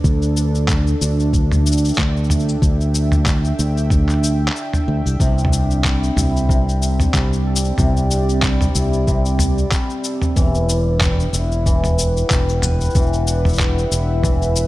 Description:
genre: folktronica.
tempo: 93 BPM.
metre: 4/4.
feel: swing 56% on 16ths.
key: unclear.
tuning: A4 = 440 Hz.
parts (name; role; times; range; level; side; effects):
warm analog pad; sustained chords; 0.0-14.7 s; C4 to G5; -25 LUFS; right 1 dB; chorus.
modern bright fingered electric bass; bass; 0.0-14.7 s; E1 to D2; -18 LUFS; equal; none.
electronic kick drum; drums; 0.0-14.4 s; none; -18 LUFS; equal; studio reverb.
lo-fi sampler-style drum kit; drums; 0.0-14.7 s; cabasa, handclaps, toms; -21 LUFS; equal; studio reverb.
cimbalom; arpeggios; 5.2-14.7 s; C3 to B4; -24 LUFS; left 1 dB; tape echo.
room: little or no reverb.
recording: none.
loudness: -15 LUFS.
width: side -17 dB against mid.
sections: 0.0-14.7 A section.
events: break 4.6-5.2.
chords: 0.0 Dsus4; 5.2 C69; 10.4 Em7.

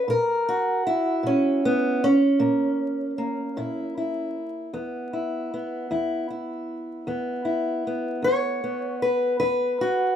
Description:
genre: acoustic country blues, solo or duo.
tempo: 51 BPM (dotted quarters).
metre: 12/8.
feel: straight.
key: unclear.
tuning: A4 = 440 Hz.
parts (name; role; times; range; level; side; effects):
fingerpicked steel-string acoustic guitar; solo; 0.0-10.2 s; E2 to C#5; -22 LUFS; equal; none.
room: moderate studio reverb, RT60 0.6 s.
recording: rough home demo mix, vinyl crackle.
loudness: -22 LUFS.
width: side -9 dB against mid.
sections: 0.0-10.2 A section.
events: none.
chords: 0.1 A#dim; 4.7 E5.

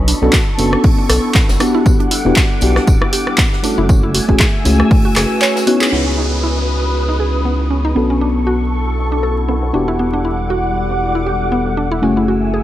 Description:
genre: deep house.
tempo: 118 BPM.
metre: 4/4.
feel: swing 56% on 16ths.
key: C# phrygian.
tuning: A4 = 439 Hz.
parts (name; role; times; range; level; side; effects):
soft string machine; sustained chords; 0.0-12.6 s; G3 to E6; -23 LUFS; left 1 dB; phaser, ensemble chorus, sidechain pumping.
mallet-like synth pluck; arpeggios; 0.0-12.6 s; B3 to C#5; -22 LUFS; right 1 dB; chorus, sidechain pumping, dub echo.
mellow FM electric piano; stabs; 0.0-12.6 s; A3 to C#5; -18 LUFS; left 1 dB; chorus, phaser, sidechain pumping, low-pass filter, tape echo.
rubbery square bass; bass; 0.0-12.6 s; D1 to C#2; -18 LUFS; equal; sidechain pumping.
warbly tape-like pad; texture; 0.0-12.6 s; B3 to F#5; -25 LUFS; right 1 dB; chorus, built-in reverb, phaser, sidechain pumping.
compact cocktail drum kit; drums; 0.1-12.6 s; hi-hat, snare drum, tambourine; -29 LUFS; equal; sidechain pumping on hats, high-pass filter on hats, low-pass filter on hats, high-pass filter on snare, low-pass filter on snare, sidechain pumping on perc, high-pass filter on perc, low-pass filter on perc, high-pass filter on room, low-pass filter on room.
punchy analog drum machine; drums; 0.1-5.9 s; handclaps, hi-hat, rim click; -18 LUFS; equal; none.
electronic kick drum; drums; 0.3-5.0 s; none; -14 LUFS; equal; none.
downlifter; sound effects; 5.9-10.0 s; none; -27 LUFS; equal; none.
room: light reverb, small room ambience.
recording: vinyl crackle.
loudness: -12 LUFS.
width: side -13 dB against mid.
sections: 0.0-5.9 A section; 5.9-12.6 B section.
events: filter sweep on synth arpeggio sound 0.0-5.9; drum fill 5.4-5.9; band accent 5.8.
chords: 0.0 Bm9; 1.6 Em9; 3.9 F#m9; 5.9 C#m9; 8.0 Bm9; 9.7 Em9; 12.0 F#m9.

